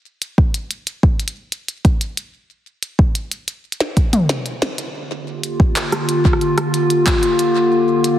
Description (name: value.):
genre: IDM.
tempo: 92 BPM.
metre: 4/4.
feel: straight.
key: G minor.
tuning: A4 = 441 Hz.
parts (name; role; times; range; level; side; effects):
glitchy drum kit; drums; 0.2-8.2 s; handclaps, hi-hat, rim click, snare drum, toms; -21 LUFS; equal; studio reverb, digital delay.
electronic kick drum; drums; 0.4-7.2 s; none; -14 LUFS; equal; studio reverb.
warbly tape-like pad; sustained chords; 5.2-8.2 s; D3 to G4; -16 LUFS; left 1 dB; chorus, built-in reverb, vintage 12-bit sampler grit, sidechain pumping.
room: moderate plate reverb, RT60 3.0 s.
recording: heavily compressed radio sound, multiband compression.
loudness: -16 LUFS.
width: side -11 dB against mid.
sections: 0.0-8.2 A section.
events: drum fill 3.8-4.8.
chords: 0.0 N.C.; 4.8 Gm7.